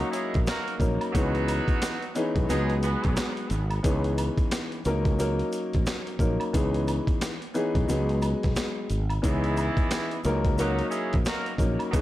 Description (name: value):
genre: hip hop, boom-bap hip-hop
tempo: 89 BPM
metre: 4/4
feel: swing 59% on 16ths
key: C# dorian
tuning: A4 = 439 Hz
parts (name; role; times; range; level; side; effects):
- dark upright piano; accompaniment; 0.0-12.0 s; E3 to A#4; -28 LUFS; left 2 dB; cassette tape, high-pass filter, low-pass filter
- clear horn section; stabs; 0.0-3.3, 9.2-12.0 s; E3 to B4; -32 LUFS; right 2 dB; high-pass filter, low-pass filter, tape echo
- boom bap sampler-style drum kit; drums; 0.0-12.0 s; hi-hat, kick drum, snare drum; -28 LUFS; equal; none
- tube shaker and woodblock; percussion; 0.1-12.0 s; none; -39 LUFS; right 2 dB; none
- fretless electric bass; bass; 0.4-12.0 s; G#1 to C#2; -27 LUFS; equal; transformer saturation
room: small room ambience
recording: dry, gritty hardware recording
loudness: -24 LUFS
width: side -15 dB against mid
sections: 0.0-12.0 A section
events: none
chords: 0.0 D#m7; 1.1 C#m9; 2.5 G#m7; 3.8 C#m9; 4.9 D#m7/C#; 6.5 C#m9; 7.9 G#m7; 9.2 C#m9; 10.2 D#m7/C#